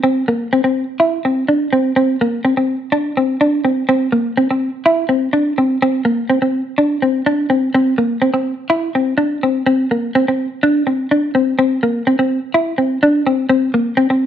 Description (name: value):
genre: highlife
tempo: 125 BPM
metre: 4/4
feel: straight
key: unclear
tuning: A4 = 441 Hz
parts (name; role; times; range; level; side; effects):
- clean electric guitar; solo; 0.0-14.3 s; Bb3 to E4; -14 LUFS; equal; analog chorus
room: moderate studio reverb, RT60 1.0 s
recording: none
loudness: -14 LUFS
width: side -10 dB against mid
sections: 0.0-11.6 A section; 11.6-14.3 B section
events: none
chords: none